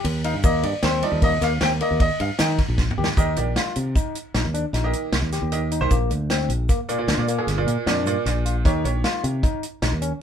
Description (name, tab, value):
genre	progressive instrumental, band music in an uneven meter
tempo	153 BPM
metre	7/4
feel	straight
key	Eb major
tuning	A4 = 444 Hz
part	bright baby grand piano	accompaniment	0.0-9.6 s	Bb2 to G5	-26 LUFS	right 3 dB	none
part	barky tine electric piano	arpeggios	0.0-10.1 s	Bb3 to G4	-28 LUFS	left 6 dB	none
part	fingered electric bass	bass	0.0-10.1 s	G1 to Eb3	-24 LUFS	equal	none
part	warm soul drum kit	drums	0.0-10.1 s	hi-hat, kick drum, ride cymbal, snare drum, toms	-23 LUFS	equal	none
part	egg shaker	percussion	0.4-8.2 s	none	-40 LUFS	right 6 dB	none
room	moderate small room reverb, RT60 0.5 s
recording	band playing live in one room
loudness	-20 LUFS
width	side -8 dB against mid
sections	0.0-3.2 A section; 3.2-10.2 B section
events	grand piano solo 0.0-3.2; drum fill 2.8-3.2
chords	0.4 Ebadd9; 3.2 Eb; 5.9 Bb; 8.7 Eb7